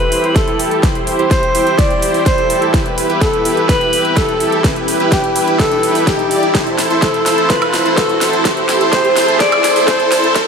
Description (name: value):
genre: EDM, festival progressive house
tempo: 126 BPM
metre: 4/4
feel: straight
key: unclear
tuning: A4 = 440 Hz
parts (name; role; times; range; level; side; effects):
- breathy alto saxophone; melody; 0.0-10.3 s; G4 to D5; -16 LUFS; left 1 dB; ping-pong delay
- dense compressed supersaw; riff; 0.0-10.5 s; E4 to D5; -16 LUFS; right 1 dB; sidechain pumping, low-pass filter, ping-pong delay
- big-room dance drum kit; drums; 0.0-10.5 s; hi-hat, snare drum, woodblock; -21 LUFS; right 1 dB; overdrive, high-pass filter on hats, high-pass filter on snare, high-pass filter on perc
- riser; sound effects; 1.5-10.5 s; none; -22 LUFS; right 2 dB; none
- electronic kick drum; drums; 0.4-10.5 s; none; -17 LUFS; equal; overdrive
room: wet plate reverb, RT60 1.5 s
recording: dreamy mix soaked in reverb, high-pass filter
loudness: -11 LUFS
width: side -6 dB against mid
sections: 0.0-10.5 A section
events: build-up 0.0-10.5; drum fill 0.0-10.5; filter sweep on supersaw synth 0.0-10.5; filter sweep 0.0-10.5; riser 1.5-10.5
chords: 0.0 C; 2.7 Em; 6.5 Am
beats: 0.36 | 0.83 1.31 1.78 2.26 | 2.74 3.21 3.69 4.17 | 4.64 5.12 5.59 6.07 | 6.55 7.02 7.50 7.98 | 8.45 8.93 9.40 9.88 | 10.36